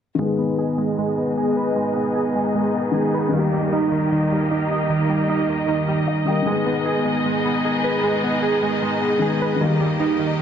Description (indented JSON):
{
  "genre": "hip hop",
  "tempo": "153 BPM",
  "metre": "4/4",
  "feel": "half-time",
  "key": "G# harmonic minor",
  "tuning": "A4 = 439 Hz",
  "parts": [
    { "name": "felt-muted upright piano", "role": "accompaniment", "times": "0.1-10.4 s", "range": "D#3 to G5", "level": "-26 LUFS", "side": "left 5 dB", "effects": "low-pass filter" },
    { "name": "clear symphonic string section", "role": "sustained chords", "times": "0.2-10.4 s", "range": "D#3 to D#5", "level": "-26 LUFS", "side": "left 2 dB", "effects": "low-pass filter" },
    { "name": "warbly lo-fi synth keys", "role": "arpeggios", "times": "0.2-10.4 s", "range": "D#3 to D#5", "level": "-20 LUFS", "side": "right 2 dB", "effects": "chorus, low-pass filter, ping-pong delay" }
  ],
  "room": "light reverb, studio reverb",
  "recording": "none",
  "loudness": "-18 LUFS",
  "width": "side -8 dB against mid",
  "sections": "0.2-10.4 A section",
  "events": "filter sweep 0.2-10.4; felt piano fill 5.9-6.5",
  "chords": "0.2 G#m; 3.3 D#; 6.5 G#m; 9.6 D#"
}